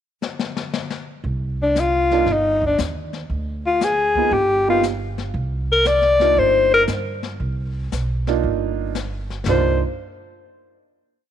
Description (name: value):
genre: jazz, small-group swing and bop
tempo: 117 BPM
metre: 4/4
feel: swing 68% on 8ths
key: C minor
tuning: A4 = 440 Hz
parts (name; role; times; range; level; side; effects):
- jazz brush drum kit; drums; 0.2-9.9 s; brushed snare drum, hi-hat, kick drum, snare drum, splash cymbal, toms; -29 LUFS; left 5 dB; none
- upright bass; bass; 1.2-9.8 s; G1 to G2; -25 LUFS; right 2 dB; none
- breathy alto saxophone; melody; 1.6-9.8 s; D4 to D5; -17 LUFS; left 3 dB; none
- warm baby grand piano; accompaniment; 2.1-9.8 s; Bb3 to G4; -24 LUFS; right 16 dB; none
room: light reverb, small room ambience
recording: 1960s-style stereo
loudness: -17 LUFS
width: side -10 dB against mid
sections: 0.0-1.2 pickup bar; 1.2-9.5 A section; 9.5-11.3 final chord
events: drum fill 0.2-1.2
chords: 0.0 N.C.; 1.2 Cmadd11; 3.3 Ddim; 4.3 Gaug; 5.3 Cm11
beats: 0.21 0.72 | 1.24 1.75 2.27 2.78 | 3.29 3.81 4.32 4.84 | 5.35 5.87 6.38 6.89 | 7.41 7.92 8.44 8.96 | 9.47